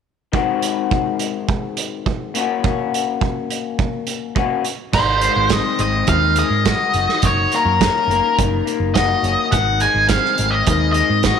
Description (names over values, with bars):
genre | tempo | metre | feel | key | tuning
indie rock | 105 BPM | 4/4 | straight | Ab mixolydian | A4 = 440 Hz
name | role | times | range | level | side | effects
electric guitar through a small old amp | riff | 0.3-11.4 s | Eb3 to Gb4 | -22 LUFS | left 11 dB | wide subtle chorus
loose indie drum kit | drums | 0.3-11.4 s | crash cymbal, hi-hat, kick drum, snare drum | -21 LUFS | right 5 dB | none
octave-fuzz lead guitar | melody | 4.9-11.4 s | Bb4 to Ab5 | -18 LUFS | equal | distortion, slapback echo
picked electric bass | bass | 4.9-11.3 s | Gb1 to Ab2 | -21 LUFS | right 2 dB | none
room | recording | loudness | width
moderate echo chamber reverb, RT60 2.3 s | 1960s-style stereo | -16 LUFS | side -7 dB against mid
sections
0.3-4.9 A section; 4.9-11.4 B section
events
none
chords
0.3 Ab7; 2.3 Gb/Bb; 4.9 Ab7; 6.9 Ebm7/Gb; 9.5 Ab7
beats
| 0.33 0.90 1.48 2.06 | 2.63 3.21 3.78 4.36 | 4.93 5.51 6.08 6.65 | 7.23 7.80 8.37 8.95 | 9.52 10.09 10.67 11.24